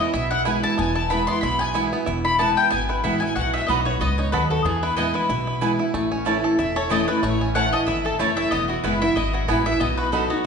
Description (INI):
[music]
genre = bluegrass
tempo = 186 BPM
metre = 4/4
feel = swing 55% on 8ths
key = E major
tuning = A4 = 440 Hz
[part]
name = bluegrass banjo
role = melody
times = 0.0-10.5 s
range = E3 to A4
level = -29 LUFS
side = right 2 dB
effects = none
[part]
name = mandolin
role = melody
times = 0.0-10.5 s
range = F#4 to C6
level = -24 LUFS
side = left 3 dB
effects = none
[part]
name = clear fiddle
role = second line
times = 0.0-10.5 s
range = F#4 to C6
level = -31 LUFS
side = left 2 dB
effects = none
[part]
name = picked steel-string acoustic guitar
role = accompaniment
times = 0.0-10.5 s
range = E2 to F#4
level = -24 LUFS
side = equal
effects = none
[part]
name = upright bass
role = bass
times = 0.1-10.3 s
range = E1 to E2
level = -27 LUFS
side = equal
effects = none
[part]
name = mandolin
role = stabs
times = 0.5-10.2 s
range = A3 to B5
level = -28 LUFS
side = right 5 dB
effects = none
[sound]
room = wet recital hall reverb, RT60 1.4 s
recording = recorded in a church or concert hall, nothing above 10.9 kHz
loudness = -19 LUFS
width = side -6 dB against mid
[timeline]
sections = 0.0-5.9 A section; 5.9-10.5 B section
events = none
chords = 0.0 E; 3.4 B; 4.7 E; 5.9 A; 8.5 E; 9.8 B